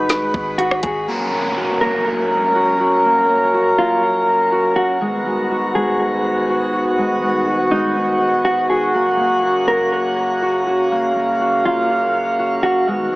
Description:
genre	hip hop, atmospheric cloud-rap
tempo	122 BPM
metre	4/4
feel	half-time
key	unclear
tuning	A4 = 439 Hz
part	mellow electric guitar	melody	0.0-12.9 s	D#4 to A#4	-22 LUFS	equal	low-pass filter, digital delay
part	dark brass ensemble	sustained chords	0.0-13.2 s	F#2 to E#5	-17 LUFS	equal	none
part	concert harp	arpeggios	0.0-13.2 s	G#3 to F#4	-24 LUFS	equal	low-pass filter, digital delay
part	warm 808-style bass	bass	0.0-1.1 s	G#1	-35 LUFS	equal	none
part	smooth R&B drum kit	drums	0.1-0.9 s	hi-hat, kick drum, rim click, snare drum	-25 LUFS	equal	vintage 12-bit sampler grit
part	downlifter	sound effects	1.1-5.0 s	none	-29 LUFS	equal	none
room	wet shimmer reverb, RT60 5.8 s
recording	small speaker sound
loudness	-15 LUFS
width	side -21 dB against mid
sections	0.0-1.1 A section; 1.1-13.2 B section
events	none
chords	0.0 G#m7; 1.1 F#; 5.0 G#m7; 8.9 F#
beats	0.09 0.59 | 1.08 1.57 2.06 2.55 | 3.04 3.54 4.03 4.52 | 5.01 5.50 6.00 6.49 | 6.98 7.47 7.96 8.46 | 8.95 9.44 9.93 10.42 | 10.91 11.41 11.90 12.39 | 12.88

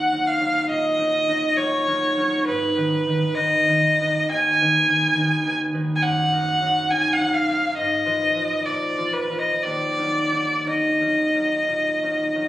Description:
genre	classical, romantic duo for violin and harp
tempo	57-72 BPM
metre	4/4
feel	rubato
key	Eb minor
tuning	A4 = 437 Hz
part	clear violin	melody	0.0-12.5 s	Cb5 to Ab5	-20 LUFS	equal	none
part	concert harp	accompaniment	0.0-12.5 s	Eb2 to Cb5	-24 LUFS	equal	none
room	wet recital hall reverb, RT60 1.8 s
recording	recorded on a phone in the room, club reverb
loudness	-18 LUFS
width	side -14 dB against mid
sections	0.0-12.5 A section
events	none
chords	0.0 Ebm; 2.5 Abm; 6.0 Ebm/Gb; 7.8 Fdim/Ab; 8.7 Bb; 9.6 Ebm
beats	0.69 1.57 | 2.47 3.36 4.31 5.17 | 6.02 6.90 7.77 8.66 | 9.63 10.66 11.69

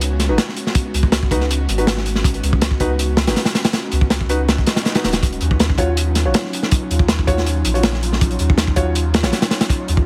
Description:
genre	drum and bass, jungle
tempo	161 BPM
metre	4/4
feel	straight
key	Eb minor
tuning	A4 = 440 Hz
part	airy breathy pad	sustained chords	0.0-10.1 s	Gb3 to Gb4	-29 LUFS	equal	chorus, vintage 12-bit sampler grit
part	soft dub sub bass	bass	0.0-10.1 s	Eb1 to Eb2	-22 LUFS	equal	none
part	crunchy breakbeat drum kit	drums	0.0-10.1 s	hi-hat, kick drum, snare drum	-20 LUFS	equal	none
part	dark concert grand piano	stabs	0.3-9.3 s	Eb4 to Db5	-27 LUFS	equal	dub echo
part	swell	sound effects	4.6-5.2 s	none	-36 LUFS	equal	none
room	light reverb, small room ambience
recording	heavily compressed radio sound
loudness	-18 LUFS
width	mono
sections	0.0-10.1 A section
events	swell 4.6-5.2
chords	0.0 Db7sus4; 5.2 Ebm9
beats	0.01 0.38 | 0.75 1.12 1.50 1.87 | 2.24 2.62 2.99 3.36 | 3.73 4.11 4.48 4.85 | 5.22 5.60 5.97 6.34 | 6.71 7.09 7.46 7.83 | 8.21 8.58 8.95 9.32 | 9.70

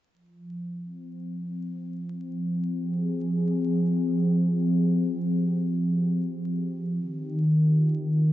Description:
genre	ambient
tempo	free time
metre	none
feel	none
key	F minor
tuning	A4 = 440 Hz
part	warm analog pad	sustained chords	0.1-8.3 s	Eb3 to Ab4	-24 LUFS	equal	chorus
room	light reverb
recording	vinyl crackle, nothing above 7.9 kHz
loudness	-24 LUFS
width	side -14 dB against mid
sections	0.1-8.3 A section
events	filter sweep on analog synth pad 0.1-8.3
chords	0.1 Fm; 7.0 Ebadd9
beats	free time

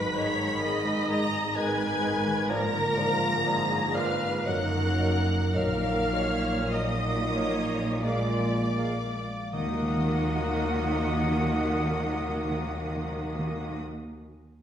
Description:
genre	classical, slow romantic movement for symphony orchestra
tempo	38-66 BPM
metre	3/4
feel	rubato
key	Eb minor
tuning	A4 = 438 Hz
part	dark studio violin section	melody	0.0-13.8 s	D6 to Cb7	-36 LUFS	left 3 dB	none
part	clear oboe	second line	0.0-13.8 s	D5 to Cb6	-36 LUFS	equal	none
part	rich studio violin section	second line	0.0-13.8 s	D5 to Cb6	-36 LUFS	left 1 dB	none
part	rich studio viola section	accompaniment	0.0-13.8 s	Bb3 to Eb5	-33 LUFS	right 1 dB	none
part	warm French horn section	sustained chords	0.0-13.8 s	Ab3 to F4	-35 LUFS	left 1 dB	none
part	warm trombone section	sustained chords	0.0-13.8 s	Gb2 to Ab3	-36 LUFS	right 2 dB	none
part	concert harp	arpeggios	0.0-14.1 s	Gb2 to Bb5	-36 LUFS	left 4 dB	none
part	rich studio cello section	bass	0.0-13.8 s	Gb2 to Eb3	-33 LUFS	right 2 dB	none
part	rich studio double bass section	bass	0.0-13.8 s	Gb1 to Eb2	-34 LUFS	right 1 dB	none
part	concert flute	second line	0.2-13.8 s	D5 to Gb5	-39 LUFS	left 2 dB	none
part	mellow clarinet	second line	0.2-13.8 s	Ab4 to Bb4	-40 LUFS	left 2 dB	none
part	mellow bassoon	accompaniment	0.2-13.8 s	Eb3 to Bb3	-38 LUFS	equal	none
part	timpani	percussion	5.5-13.8 s	Bb2 to Eb3	-34 LUFS	right 1 dB	none
room	wet recital hall reverb, RT60 1.4 s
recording	recorded in a church or concert hall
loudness	-25 LUFS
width	side -9 dB against mid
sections	0.0-9.5 A section; 9.5-13.9 B section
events	slowing down 1.1-9.5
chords	0.0 Abm; 2.5 Bb7/Ab; 4.5 Ebm/Gb; 5.6 Ebm/Bb; 8.0 Bb7; 9.5 Ebm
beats	0.64 1.57 | 2.52 3.48 4.47 | 5.56 6.72 8.03 | 9.54 11.02 12.47

